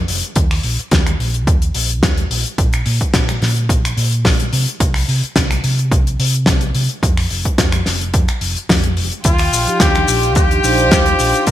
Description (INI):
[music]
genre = nu-disco, nu disco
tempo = 108 BPM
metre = 4/4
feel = swing 53% on 16ths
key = Eb major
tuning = A4 = 440 Hz
[part]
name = hollow-body short-scale fingered electric bass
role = bass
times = 0.0-11.5 s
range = F1 to C3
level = -18 LUFS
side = equal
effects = none
[part]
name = damped 70s drum kit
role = drums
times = 0.1-11.5 s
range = finger snaps, hi-hat, snare drum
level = -19 LUFS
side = left 2 dB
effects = studio reverb, gated reverb
[part]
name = electronic kick drum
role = drums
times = 0.4-11.5 s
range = none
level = -16 LUFS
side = equal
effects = overdrive, studio reverb
[part]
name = clear studio violin section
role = sustained chords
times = 9.2-11.5 s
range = F4 to G5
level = -23 LUFS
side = right 3 dB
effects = sidechain pumping
[part]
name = clear trumpet section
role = melody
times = 9.3-11.5 s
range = F4 to Bb4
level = -16 LUFS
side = left 2 dB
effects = ping-pong delay
[part]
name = maracas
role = percussion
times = 9.3-11.5 s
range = none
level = -24 LUFS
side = left 7 dB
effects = none
[part]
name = mellow synth brass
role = accompaniment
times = 9.7-11.5 s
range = F3 to C5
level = -19 LUFS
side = equal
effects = chorus, sidechain pumping
[sound]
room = light reverb, studio reverb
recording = bright 1980s-style digital production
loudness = -13 LUFS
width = side -12 dB against mid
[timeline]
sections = 0.0-11.5 A section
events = none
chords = 0.4 Eb5; 2.6 N.C.; 9.2 Ebmaj9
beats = | 0.36 0.92 1.47 2.03 | 2.58 3.14 3.69 4.25 | 4.81 5.36 5.92 6.47 | 7.03 7.58 8.14 8.70 | 9.25 9.81 10.36 10.92 | 11.47